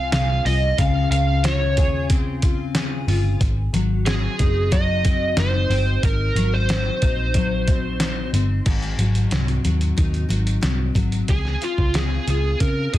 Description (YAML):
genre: indie pop, bedroom pop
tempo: 91 BPM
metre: 4/4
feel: straight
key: Db major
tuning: A4 = 437 Hz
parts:
  - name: overdriven slide guitar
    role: melody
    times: 0.0-13.0 s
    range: F4 to F5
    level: -24 LUFS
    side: right 1 dB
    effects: analog chorus, slapback echo
  - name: picked steel-string acoustic guitar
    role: accompaniment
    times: 0.0-13.0 s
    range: Ab2 to Ab4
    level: -26 LUFS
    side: left 4 dB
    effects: ensemble chorus, warbly pitch drift
  - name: vintage muted picked electric bass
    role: bass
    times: 0.0-13.0 s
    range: Gb1 to Db3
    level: -21 LUFS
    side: equal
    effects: none
  - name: dusty soul sampler-style drum kit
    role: drums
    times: 0.1-13.0 s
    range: crash cymbal, hi-hat, kick drum, snare drum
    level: -22 LUFS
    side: equal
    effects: none
room: little or no reverb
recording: dense, heavily limited modern master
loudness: -18 LUFS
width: side -14 dB against mid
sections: 0.0-8.7 A section; 8.7-11.3 B section; 11.3-13.0 C section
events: none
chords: 0.0 Dbmaj7; 3.4 Ab7; 11.3 Dbmaj7